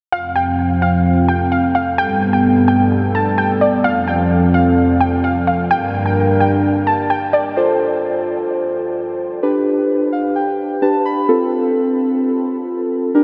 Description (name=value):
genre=pop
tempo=129 BPM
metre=4/4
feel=straight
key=F major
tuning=A4 = 443 Hz
part: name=warbly dusty pluck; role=second line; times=0.1-7.4 s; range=D5 to A5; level=-21 LUFS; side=equal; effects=chorus, analog delay
part: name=chorused pulse-width pad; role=sustained chords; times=0.1-7.5 s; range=F2 to Bb4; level=-18 LUFS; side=equal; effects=low-pass filter
part: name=muted felt-like synth keys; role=accompaniment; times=7.6-13.2 s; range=C4 to B5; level=-18 LUFS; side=equal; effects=chorus
room=wet huge ambient reverb, RT60 8.1 s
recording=dreamy mix soaked in reverb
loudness=-16 LUFS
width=mono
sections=0.1-7.6 A section; 7.6-13.2 B section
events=filter sweep on analog synth pad 0.1-7.6; synth keys fill 9.9-11.3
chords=0.1 F; 2.0 Gadd9; 3.8 F; 5.7 Gm; 7.6 F; 9.4 G; 11.3 F